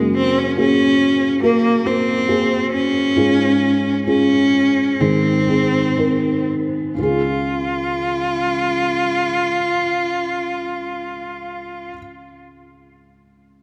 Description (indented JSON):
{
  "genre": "pop ballad",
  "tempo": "58-72 BPM",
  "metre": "4/4",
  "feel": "straight",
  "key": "Db major",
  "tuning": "A4 = 438 Hz",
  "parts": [
    { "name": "rich cello", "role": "melody", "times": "0.0-11.9 s", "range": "Ab3 to F4", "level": "-20 LUFS", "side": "equal", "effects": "tape echo" },
    { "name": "felt-muted upright piano", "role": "accompaniment", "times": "0.0-13.6 s", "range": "Db2 to Bb4", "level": "-21 LUFS", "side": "equal", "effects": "none" }
  ],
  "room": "wet plate reverb, RT60 2.8 s",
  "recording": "dreamy mix soaked in reverb",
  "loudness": "-18 LUFS",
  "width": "mono",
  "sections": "0.0-7.0 A section; 7.0-11.1 B section",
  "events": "slowing down 0.0-7.0",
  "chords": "0.0 Gbadd9; 3.2 Db/Ab; 5.0 Ab; 7.0 Db"
}